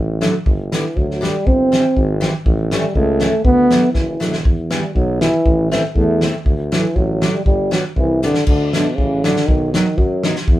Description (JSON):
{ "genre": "alpine folk, alpine dance band", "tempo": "120 BPM", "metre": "2/4", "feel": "straight", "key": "G major", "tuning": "A4 = 440 Hz", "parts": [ { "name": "warm tuba", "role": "bass", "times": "0.0-10.6 s", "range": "E1 to F#2", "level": "-21 LUFS", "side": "equal", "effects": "none" }, { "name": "picked steel-string acoustic guitar", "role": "accompaniment", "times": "0.2-10.3 s", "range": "D3 to D#4", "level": "-21 LUFS", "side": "equal", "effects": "none" }, { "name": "loose indie drum kit", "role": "drums", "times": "0.2-10.6 s", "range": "crash cymbal, hi-hat, kick drum, snare drum", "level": "-18 LUFS", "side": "equal", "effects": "none" }, { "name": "mellow euphonium", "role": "melody", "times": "0.7-10.4 s", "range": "B2 to C4", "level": "-17 LUFS", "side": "equal", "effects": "none" } ], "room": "moderate small room ambience, RT60 0.5 s", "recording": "band playing live in one room", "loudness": "-14 LUFS", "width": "side -15 dB against mid", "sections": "0.0-8.5 A section; 8.5-10.6 B section", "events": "drum fill 4.0-4.5, 8.2", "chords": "0.5 G; 1.5 C/G; 2.5 A; 3.5 D; 4.5 Em; 5.5 Am; 6.5 D; 7.5 G; 8.5 D; 9.5 B", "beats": "| 0.46 0.96 | 1.47 1.97 | 2.46 2.96 | 3.46 3.96 | 4.46 4.97 | 5.46 5.96 | 6.46 6.96 | 7.46 7.96 | 8.47 8.98 | 9.48 9.97 | 10.47" }